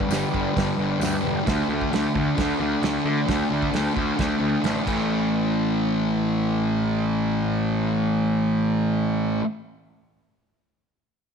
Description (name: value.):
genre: garage rock duo or trio.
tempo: 132 BPM.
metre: 4/4.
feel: straight.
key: unclear.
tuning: A4 = 437 Hz.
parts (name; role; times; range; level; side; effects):
overdriven combo organ; sustained chords; 0.0-1.4 s; G4 to D5; -32 LUFS; left 4 dB; none.
fuzz guitar; riff; 0.0-9.5 s; G2 to D4; -22 LUFS; equal; distortion.
cloth-damped thuddy drum kit; drums; 0.0-5.0 s; crash cymbal, hi-hat, kick drum, snare drum; -29 LUFS; right 3 dB; none.
fuzz picked electric bass; bass; 0.1-9.4 s; E1 to D3; -28 LUFS; equal; overdrive.
tambourine; percussion; 0.1-1.1 s; none; -38 LUFS; left 16 dB; none.
room: light reverb, small room reverb.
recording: 1960s-style stereo.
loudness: -21 LUFS.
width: side -6 dB against mid.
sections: 0.0-5.1 A section; 5.1-8.7 B section.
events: none.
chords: 0.0 G; 1.5 D5; 4.9 A5.